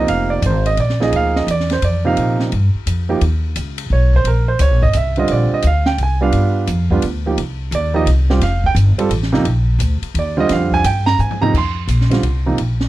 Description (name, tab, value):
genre	jazz, small-group swing and bop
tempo	173 BPM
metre	3/4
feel	swing 64% on 8ths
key	Bb mixolydian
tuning	A4 = 441 Hz
part	warm baby grand piano	accompaniment	0.0-12.6 s	C3 to C6	-18 LUFS	right 4 dB	none
part	upright bass	bass	0.0-12.9 s	F1 to Bb2	-16 LUFS	equal	none
part	open jazz drum kit	drums	0.1-12.9 s	crash cymbal, hi-hat, kick drum, ride cymbal, snare drum, toms	-25 LUFS	equal	none
room	little or no reverb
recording	dry, close 1970s-style studio recording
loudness	-14 LUFS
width	side -15 dB against mid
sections	0.0-11.5 A section; 11.5-12.9 A section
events	drum fill 11.2-11.5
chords	0.0 Bb9; 3.2 Badd9; 4.3 Eb13b9; 5.3 Bbadd9; 6.3 G7; 7.4 Cm; 8.4 Fadd9; 9.5 Bb9; 11.5 Bbsus2